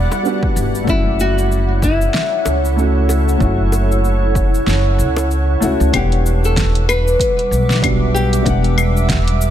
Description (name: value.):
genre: sunset chillout.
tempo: 95 BPM.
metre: 4/4.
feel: swing 58% on 16ths.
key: E dorian.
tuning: A4 = 439 Hz.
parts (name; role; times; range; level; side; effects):
dark grand piano; accompaniment; 0.0-9.5 s; G3 to F#5; -22 LUFS; moving between left 7 dB and right 5 dB; auto-pan, ping-pong delay.
shimmering ambient pad; sustained chords; 0.0-9.5 s; G3 to D6; -22 LUFS; right 3 dB; chorus, built-in reverb.
upright bass; bass; 0.0-9.5 s; E1 to C#2; -16 LUFS; equal; tube saturation.
deep house drum kit; drums; 0.1-9.5 s; cabasa, claves, hi-hat, snare drum; -23 LUFS; left 1 dB; overdrive, studio reverb.
bongos; percussion; 0.1-5.3 s; none; -29 LUFS; left 1 dB; none.
electronic kick drum; drums; 0.4-9.2 s; none; -20 LUFS; equal; overdrive, studio reverb.
nylon-string guitar; melody; 0.9-9.5 s; E4 to B4; -20 LUFS; left 2 dB; ping-pong delay.
room: light reverb, small room ambience.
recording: none.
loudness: -13 LUFS.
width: side -11 dB against mid.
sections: 0.0-5.9 A section; 5.9-9.5 B section.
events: kick drops out 4.7-5.9.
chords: 0.0 Em9; 0.9 F#m7; 5.9 Em9.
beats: 0.25 | 0.88 1.51 2.14 2.77 | 3.41 4.04 4.67 5.30 | 5.93 6.56 7.20 7.83 | 8.46 9.09.